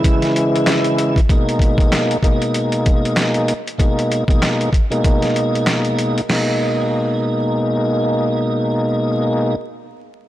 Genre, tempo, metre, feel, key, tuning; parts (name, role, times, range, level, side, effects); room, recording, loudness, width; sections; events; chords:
hip hop, boom-bap hip-hop; 96 BPM; 4/4; swing 58% on 16ths; G# minor; A4 = 440 Hz
tonewheel organ; accompaniment; 0.0-9.6 s; B2 to E4; -17 LUFS; equal; overdrive, chorus vibrato, slow rotary speaker, cassette tape
boom bap sampler-style drum kit; drums; 0.0-6.5 s; crash cymbal, handclaps, hi-hat, kick drum, snare drum; -17 LUFS; equal
light reverb; blown-out, overdriven recording, vinyl crackle, overdrive; -15 LUFS; side -14 dB against mid
0.0-1.3 A section; 1.3-6.3 B section; 6.3-8.8 C section
0.0 C#m; 1.3 G#madd9